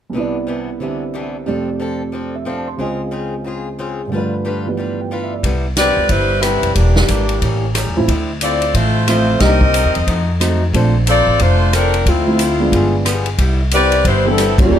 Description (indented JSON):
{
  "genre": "jazz, big band swing",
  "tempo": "181 BPM",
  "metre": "4/4",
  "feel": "swing 61% on 8ths",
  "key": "C major",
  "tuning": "A4 = 438 Hz",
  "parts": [
    { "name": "picked swing-style acoustic guitar", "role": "accompaniment", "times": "0.1-14.8 s", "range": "A2 to C5", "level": "-26 LUFS", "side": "left 3 dB", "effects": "none" },
    { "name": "warm concert grand piano", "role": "accompaniment", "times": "0.1-5.5, 8.0-14.7 s", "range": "C2 to C6", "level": "-20 LUFS", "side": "right 2 dB", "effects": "none" },
    { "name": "upright bass", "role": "bass", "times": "5.4-14.8 s", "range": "E1 to A2", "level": "-16 LUFS", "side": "equal", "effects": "none" },
    { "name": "swinging big-band drum kit", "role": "drums", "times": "5.4-14.6 s", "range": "hi-hat, kick drum, ride cymbal, rim click, snare drum", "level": "-20 LUFS", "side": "equal", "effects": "none" },
    { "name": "clear saxophone section", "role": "melody", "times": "5.8-14.8 s", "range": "Eb3 to Eb5", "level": "-16 LUFS", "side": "left 2 dB", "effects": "none" },
    { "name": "mellow trombone section", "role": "second line", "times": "14.6-14.8 s", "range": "Bb2 to G3", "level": "-16 LUFS", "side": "right 4 dB", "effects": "none" }
  ],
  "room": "light reverb",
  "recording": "close, detailed microphones",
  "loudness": "-14 LUFS",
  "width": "side -10 dB against mid",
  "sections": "0.1-5.4 A section; 5.4-14.8 B section",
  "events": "band accent 14.5",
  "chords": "0.1 Cmaj9; 1.5 F6; 2.8 Dbmaj7; 4.1 G7; 5.4 Cmaj7; 6.8 Em7b5; 7.4 A7b9; 8.1 Dm9; 9.4 Cm7; 10.1 F7b9; 10.7 Bbmaj9; 12.1 Dm9; 12.7 G7b9; 13.4 Cmaj7"
}